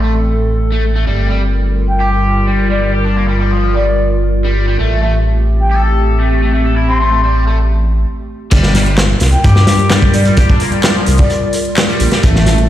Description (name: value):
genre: breakbeat, breaks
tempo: 129 BPM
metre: 4/4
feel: straight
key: G minor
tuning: A4 = 441 Hz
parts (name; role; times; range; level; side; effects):
- warbly tape-like pad; sustained chords; 0.0-12.7 s; G3 to Bb4; -19 LUFS; equal; chorus, built-in reverb, sidechain pumping
- raw garage guitar; riff; 0.0-12.6 s; F3 to A4; -19 LUFS; left 1 dB; overdrive, phaser, ping-pong delay
- dark detuned saw bass; bass; 0.0-12.7 s; G1 to G2; -13 LUFS; equal; tube saturation
- hollow wooden flute; melody; 1.9-11.5 s; D5 to C6; -20 LUFS; left 2 dB; small speaker sound, ping-pong delay
- crunchy breakbeat drum kit; drums; 8.5-12.6 s; crash cymbal, hi-hat, kick drum, snare drum; -12 LUFS; equal; none
- house drum kit; drums; 8.5-12.7 s; handclaps, hi-hat; -22 LUFS; equal; low-pass filter on hats, low-pass filter on snare
room: light reverb, studio ambience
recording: played on a big sound system in a bare room, stone room reverb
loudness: -10 LUFS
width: side -12 dB against mid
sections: 0.0-8.5 A section; 8.5-12.7 B section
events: stop 8.1-8.5; drop 8.5-12.7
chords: 0.0 Am; 1.1 Gm7; 4.8 Am7; 8.5 Gm7